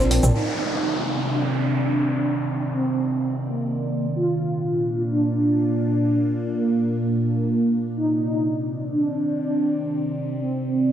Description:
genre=techno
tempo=126 BPM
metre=4/4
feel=straight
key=C minor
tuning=A4 = 440 Hz
part: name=mellow synth brass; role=melody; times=0.0-10.9 s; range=Bb3 to F4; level=-24 LUFS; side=right 1 dB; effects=chorus, cassette tape, tape echo
part: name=evolving wavetable pad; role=sustained chords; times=0.0-10.9 s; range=Bb2 to A5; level=-24 LUFS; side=equal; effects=phaser, built-in reverb
part: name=downlifter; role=sound effects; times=0.3-4.2 s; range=none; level=-30 LUFS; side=equal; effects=none
room=moderate scoring stage reverb, RT60 1.6 s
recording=dry, gritty hardware recording, transformer saturation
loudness=-20 LUFS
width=side -10 dB against mid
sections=0.3-10.9 A section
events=none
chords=0.3 Cmadd9; 4.2 Bb; 8.0 Cmadd9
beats=| 0.35 0.82 1.30 1.78 | 2.25 2.73 3.21 3.68 | 4.16 4.63 5.11 5.58 | 6.06 6.54 7.01 7.49 | 7.97 8.44 8.92 9.39 | 9.87 10.35 10.82

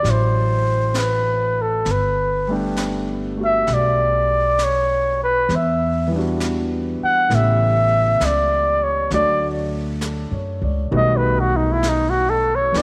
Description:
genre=jazz ballad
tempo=66 BPM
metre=4/4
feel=swing 69% on 8ths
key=D major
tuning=A4 = 442 Hz
part: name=warm flugelhorn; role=melody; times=0.0-12.8 s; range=D#4 to F#5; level=-21 LUFS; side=equal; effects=none
part: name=warm grand piano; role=accompaniment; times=0.0-12.8 s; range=C#3 to D5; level=-28 LUFS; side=equal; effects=none
part: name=upright bass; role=bass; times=0.0-12.8 s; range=G1 to F#2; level=-24 LUFS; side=equal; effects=none
part: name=jazz brush drum kit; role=drums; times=0.0-12.8 s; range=brushed snare drum, hi-hat, snare drum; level=-35 LUFS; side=equal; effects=none
room=light reverb, studio reverb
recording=none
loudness=-19 LUFS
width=mono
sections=0.0-12.8 A section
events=flugelhorn solo 0.0-12.8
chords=0.0 D9; 1.9 Gmaj9; 5.5 Em9; 7.3 A9; 9.1 Dmaj7; 10.9 B7b13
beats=0.04 0.95 | 1.86 2.77 3.68 4.59 | 5.49 6.40 7.30 8.21 | 9.11 10.02 10.92 11.83 | 12.74

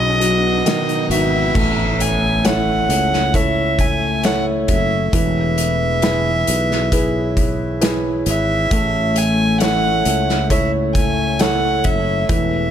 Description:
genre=pop ballad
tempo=67 BPM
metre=4/4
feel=straight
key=unclear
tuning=A4 = 440 Hz
part: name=warm violin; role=melody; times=0.0-12.7 s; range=D#5 to G#5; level=-20 LUFS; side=right 1 dB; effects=none
part: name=warm concert grand piano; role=accompaniment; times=0.0-12.7 s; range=B2 to C#5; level=-22 LUFS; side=right 1 dB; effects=none
part: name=glass harmonica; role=sustained chords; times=0.0-12.7 s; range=A3 to F#5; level=-24 LUFS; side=left 1 dB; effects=none
part: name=sustaining fretless electric bass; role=bass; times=0.0-12.7 s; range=E1 to C#2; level=-22 LUFS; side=equal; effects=none
part: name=riser and impact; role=sound effects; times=0.0-5.1 s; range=none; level=-27 LUFS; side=equal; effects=none
part: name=loose indie drum kit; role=drums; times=0.2-12.5 s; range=crash cymbal, hi-hat, kick drum, snare drum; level=-21 LUFS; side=equal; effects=none
room=light reverb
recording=none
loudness=-15 LUFS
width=side -9 dB against mid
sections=0.0-1.5 A section; 1.5-12.7 B section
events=riser 0.0-1.5; impact 1.5-5.1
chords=0.0 B; 1.5 A; 5.1 E; 8.7 A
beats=0.65 | 1.55 2.44 3.34 4.24 | 5.13 6.03 6.92 7.82 | 8.71 9.61 10.50 11.40 | 12.30

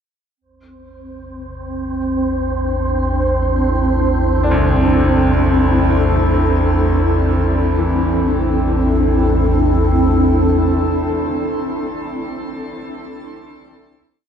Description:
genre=dark ambient drone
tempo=free time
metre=none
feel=none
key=A minor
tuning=A4 = 440 Hz
part: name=granular cloud pad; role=sustained chords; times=1.4-12.2 s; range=C4 to A4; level=-18 LUFS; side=equal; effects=built-in reverb, shimmer reverb
part: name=deep rumbling drone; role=drone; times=1.5-11.9 s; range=A1 to E2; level=-18 LUFS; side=equal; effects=built-in reverb, lush chorus
part: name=wind-like tuned noise texture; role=texture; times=1.6-7.8 s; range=C5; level=-26 LUFS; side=right 3 dB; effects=built-in reverb, shimmer reverb
part: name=bright concert grand piano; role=arpeggios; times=4.4-14.0 s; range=C2 to D4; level=-24 LUFS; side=left 2 dB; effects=ping-pong delay, shimmer reverb
room=wet huge ambient reverb, RT60 8.0 s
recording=cassette tape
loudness=-14 LUFS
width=side -8 dB against mid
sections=0.4-7.8 A section; 7.8-11.5 final chord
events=none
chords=0.4 A5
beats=free time

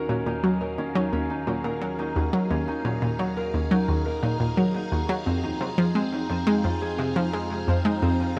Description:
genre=ambient, sequencer-driven space music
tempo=87 BPM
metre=4/4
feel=straight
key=Eb dorian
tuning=A4 = 441 Hz
part: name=phased string machine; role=sustained chords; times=0.0-8.4 s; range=Eb3 to F5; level=-39 LUFS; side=equal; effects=ensemble chorus, phaser
part: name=Celtic harp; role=arpeggios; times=0.0-8.4 s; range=C4 to Bb4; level=-31 LUFS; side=equal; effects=tape echo
part: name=fat analog bass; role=bass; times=0.0-8.4 s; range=Eb2 to F2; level=-42 LUFS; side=equal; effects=none
part: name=analog pluck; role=riff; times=0.1-8.4 s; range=Eb2 to Ab3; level=-27 LUFS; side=equal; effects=chorus, tape echo
room=moderate plate reverb, RT60 2.8 s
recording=none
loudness=-25 LUFS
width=mono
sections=0.0-8.4 A section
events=none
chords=0.0 Ebm7; 5.3 Fm7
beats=0.44 1.12 1.81 | 2.50 3.19 3.88 4.57 | 5.26 5.95 6.64 7.33 | 8.02

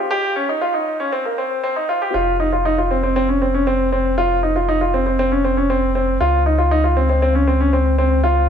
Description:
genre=piano and strings electronica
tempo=118 BPM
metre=4/4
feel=straight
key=unclear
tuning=A4 = 440 Hz
part: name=warm grand piano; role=riff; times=0.0-8.4 s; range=Bb3 to G4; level=-17 LUFS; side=equal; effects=ping-pong delay
part: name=warm sub bass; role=bass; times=2.1-8.5 s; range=F1 to Db2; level=-19 LUFS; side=left 1 dB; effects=none
room=moderate echo chamber reverb, RT60 1.8 s, studio reverb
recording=high-pass filter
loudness=-15 LUFS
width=side -8 dB against mid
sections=0.0-2.1 A section; 2.1-8.5 B section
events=build-up 0.0-2.1; drop 2.1-8.5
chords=0.0 Bbmadd11 (rootless); 2.1 F5; 6.2 Db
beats=| 0.11 0.62 1.13 1.63 | 2.14 2.65 3.16 3.67 | 4.18 4.68 5.19 5.70 | 6.21 6.72 7.23 7.74 | 8.24

